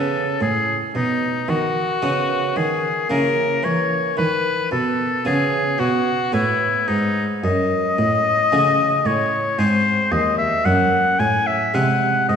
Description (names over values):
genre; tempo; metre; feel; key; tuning
classical, baroque-style sonata movement with continuo; 56 BPM; 3/4; straight; unclear; A4 = 441 Hz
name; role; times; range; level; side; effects
bright oboe; melody; 0.0-12.4 s; D#4 to G#5; -19 LUFS; left 3 dB; none
harpsichord; accompaniment; 0.0-12.4 s; D#2 to G#4; -23 LUFS; right 1 dB; none
rich cello; bass; 0.0-12.4 s; D#2 to E3; -24 LUFS; right 2 dB; none
room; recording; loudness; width
wet concert hall reverb, RT60 2.2 s; recorded in a church or concert hall; -17 LUFS; side -7 dB against mid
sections
0.0-12.4 A section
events
none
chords
0.0 Amaj9; 1.0 B; 3.1 A#dim/C#; 4.2 B; 7.4 F#m; 9.6 G#; 10.7 G#7/F#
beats
| 0.95 2.03 3.11 | 4.18 5.26 6.33 | 7.44 8.52 9.59 | 10.66 11.74